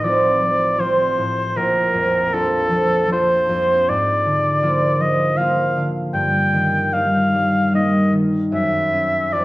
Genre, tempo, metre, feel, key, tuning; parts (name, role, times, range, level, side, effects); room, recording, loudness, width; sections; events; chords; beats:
classical, romantic duo for oboe and harp; 78 BPM; 3/4; rubato; Bb major; A4 = 440 Hz
clear oboe; melody; 0.0-9.4 s; A4 to G5; -18 LUFS; left 1 dB
concert harp; accompaniment; 0.0-9.4 s; A1 to F4; -19 LUFS; right 1 dB
moderate recital hall reverb, RT60 1.6 s; worn, warbling old tape, cassette tape, warbly pitch drift; -16 LUFS; side -18 dB against mid
0.0-9.4 A section
0.0 F7/A; 1.6 Bb; 3.9 Bb7/Ab; 6.2 Eb/G; 8.5 Gb7
0.03 0.80 | 1.56 2.33 3.11 | 3.88 4.63 5.39 | 6.15 6.94 7.74 | 8.53 9.34